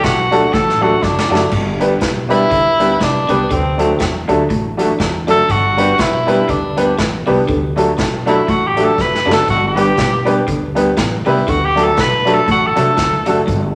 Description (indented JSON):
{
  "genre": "ska",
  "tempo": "121 BPM",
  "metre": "4/4",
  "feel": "swing 57% on 8ths",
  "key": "G major",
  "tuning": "A4 = 440 Hz",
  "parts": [
    { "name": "clear tenor saxophone", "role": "melody", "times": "0.0-13.4 s", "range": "C4 to B4", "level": "-18 LUFS", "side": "equal", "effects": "none" },
    { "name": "electric guitar at the edge of break-up", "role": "riff", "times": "0.0-13.6 s", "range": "F#2 to E3", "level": "-27 LUFS", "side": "equal", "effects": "phaser" },
    { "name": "upright bass", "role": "bass", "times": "0.0-13.8 s", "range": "F#1 to E2", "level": "-25 LUFS", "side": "equal", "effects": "none" },
    { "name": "street-band drum kit", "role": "drums", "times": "0.0-13.6 s", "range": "crash cymbal, hi-hat, kick drum, snare drum", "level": "-24 LUFS", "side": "equal", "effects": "none" },
    { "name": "vintage hollow-body jazz guitar", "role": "accompaniment", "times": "0.3-13.4 s", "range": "F#3 to D4", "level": "-24 LUFS", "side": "equal", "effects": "tape echo" },
    { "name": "warm upright piano", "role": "stabs", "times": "0.3-13.4 s", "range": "D4 to B4", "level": "-20 LUFS", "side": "equal", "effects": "none" }
  ],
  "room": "wet large studio reverb, RT60 1.3 s",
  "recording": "none",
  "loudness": "-15 LUFS",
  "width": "mono",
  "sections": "0.0-1.5 A section; 1.5-13.8 A section",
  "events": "tenor saxophone solo 0.0-1.5, 1.5-13.8; drum fill 0.5-1.5, 9.0-9.5",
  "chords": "0.0 D; 1.5 G; 3.5 D; 5.5 G; 7.5 D; 9.5 G; 11.5 D"
}